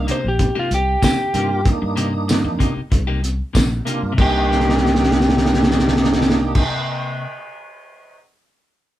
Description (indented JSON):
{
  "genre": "straight-eighth soul blues",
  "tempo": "95 BPM",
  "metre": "4/4",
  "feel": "straight",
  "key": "C minor",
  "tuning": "A4 = 440 Hz",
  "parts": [
    { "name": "electric slide guitar", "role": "melody", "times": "0.0-6.7 s", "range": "F4 to C5", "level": "-22 LUFS", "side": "equal", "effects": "none" },
    { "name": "tonewheel organ", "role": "accompaniment", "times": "0.0-6.6 s", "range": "Bb3 to F4", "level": "-24 LUFS", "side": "right 4 dB", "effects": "slow rotary speaker, overdrive, chorus vibrato" },
    { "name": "fingered electric bass", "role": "bass", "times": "0.0-6.6 s", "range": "Bb1 to G2", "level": "-22 LUFS", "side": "equal", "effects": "none" },
    { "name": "clean electric guitar", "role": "stabs", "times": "0.1-7.2 s", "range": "C3 to G4", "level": "-26 LUFS", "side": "left 3 dB", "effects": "none" },
    { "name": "cloth-damped thuddy drum kit", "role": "drums", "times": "0.1-8.2 s", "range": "crash cymbal, hi-hat, kick drum, snare drum, tambourine", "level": "-18 LUFS", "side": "equal", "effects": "none" }
  ],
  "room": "moderate small room ambience, RT60 0.5 s",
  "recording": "band playing live in one room",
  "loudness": "-15 LUFS",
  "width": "side -13 dB against mid",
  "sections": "0.0-4.2 A section; 4.2-6.7 B section",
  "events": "drum fill 4.5-6.6",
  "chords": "0.0 Cm7",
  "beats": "0.39 1.03 | 1.66 2.29 2.92 3.55 | 4.18 4.82 5.45 6.08"
}